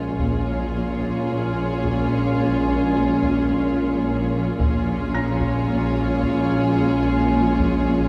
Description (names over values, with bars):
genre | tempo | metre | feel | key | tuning
cinematic, suspense film score | 55 BPM | 4/4 | straight | Bb minor | A4 = 441 Hz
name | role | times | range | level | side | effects
muted symphonic violin section | melody | 0.0-8.1 s | Db5 | -36 LUFS | equal | none
muted symphonic violin section | second line | 0.0-8.1 s | Ab4 | -34 LUFS | equal | none
muted symphonic viola section | accompaniment | 0.0-8.1 s | F4 | -32 LUFS | equal | none
warm French horn section | sustained chords | 0.0-8.1 s | Ab3 to Db4 | -26 LUFS | equal | none
muted symphonic cello section | bass | 0.0-8.1 s | Bb2 | -29 LUFS | equal | none
muted symphonic double bass section | bass | 0.0-8.1 s | Bb1 | -30 LUFS | equal | none
swarming drone | drone | 0.0-8.1 s | Bb1 | -30 LUFS | equal | built-in reverb
felt-muted upright piano | texture | 0.0-8.1 s | Bb5 to Bb6 | -38 LUFS | equal | none
muted symphonic cello section | riff | 0.2-8.1 s | Bb2 to Bb3 | -33 LUFS | equal | none
taiko ensemble | drums | 0.2-8.1 s | none | -30 LUFS | equal | none
room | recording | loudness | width
wet church reverb, RT60 3.1 s | none | -21 LUFS | mono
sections
0.0-8.1 A section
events
none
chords
0.0 Bbm7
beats
| 0.20 1.30 2.40 3.50 | 4.60 5.69 6.78 7.88